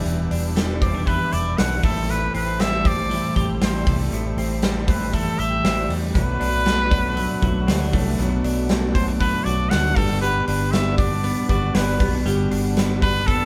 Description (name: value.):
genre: jangly indie pop.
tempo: 118 BPM.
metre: 4/4.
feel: straight.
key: unclear.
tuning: A4 = 443 Hz.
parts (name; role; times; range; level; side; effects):
overdriven combo organ; accompaniment; 0.0-13.5 s; G3 to G4; -37 LUFS; equal; none.
twelve-string electric guitar; arpeggios; 0.0-13.5 s; E2 to G4; -28 LUFS; equal; none.
vintage muted fingered electric bass; bass; 0.1-13.4 s; E1 to E2; -28 LUFS; equal; none.
big rock drum kit; drums; 0.1-13.4 s; hi-hat, kick drum, snare drum; -25 LUFS; equal; none.
clear trumpet; melody; 0.8-13.5 s; A4 to F#5; -27 LUFS; equal; none.
fingerpicked steel-string acoustic guitar; accompaniment; 6.2-13.5 s; B2 to F#4; -31 LUFS; equal; none.
room: light reverb.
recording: band playing live in one room.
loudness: -21 LUFS.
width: mono.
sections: 0.0-13.5 A section.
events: none.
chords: 0.0 Em7; 1.8 Am7; 6.2 Bm7; 10.0 Gmaj7.